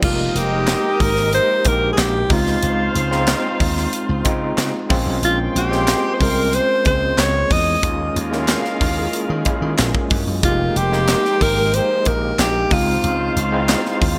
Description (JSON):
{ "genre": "polished 1980s jazz-funk pop", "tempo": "92 BPM", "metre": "4/4", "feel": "straight", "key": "F minor", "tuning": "A4 = 440 Hz", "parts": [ { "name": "clear alto saxophone", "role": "melody", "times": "0.0-13.4 s", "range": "F4 to Eb5", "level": "-22 LUFS", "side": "equal", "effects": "delay" }, { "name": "warm horn section", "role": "second line", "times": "0.0-14.2 s", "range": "C4 to C6", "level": "-30 LUFS", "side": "equal", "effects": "none" }, { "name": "overdriven tine electric piano", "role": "accompaniment", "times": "0.0-14.2 s", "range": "Ab3 to Ab4", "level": "-26 LUFS", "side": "equal", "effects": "medium tremolo, subtle chorus" }, { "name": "dark studio string section", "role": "sustained chords", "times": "0.0-14.2 s", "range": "Eb3 to C5", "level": "-33 LUFS", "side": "equal", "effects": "none" }, { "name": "slap bass", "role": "bass", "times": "0.0-14.2 s", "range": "F1 to Eb3", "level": "-24 LUFS", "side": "equal", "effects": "none" }, { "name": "crisp fusion drum kit", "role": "drums", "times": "0.0-14.2 s", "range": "crash cymbal, hi-hat, kick drum, snare drum", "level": "-23 LUFS", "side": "equal", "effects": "gated reverb" }, { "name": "group handclap", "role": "percussion", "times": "0.7-13.8 s", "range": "none", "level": "-31 LUFS", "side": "equal", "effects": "none" } ], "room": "light reverb, small room ambience", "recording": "bright 1980s-style digital production", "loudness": "-18 LUFS", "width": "mono", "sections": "0.0-14.2 A section", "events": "none", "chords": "0.0 Fm11; 2.3 Dbmaj7; 4.9 Bbm9; 7.8 Eb9sus4; 10.4 Fm11; 12.7 Dbmaj7", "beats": "| 0.03 0.68 1.33 1.98 | 2.63 3.28 3.93 4.58 | 5.23 5.88 6.53 7.18 | 7.83 8.48 9.13 9.78 | 10.43 11.08 11.74 12.39 | 13.04 13.69" }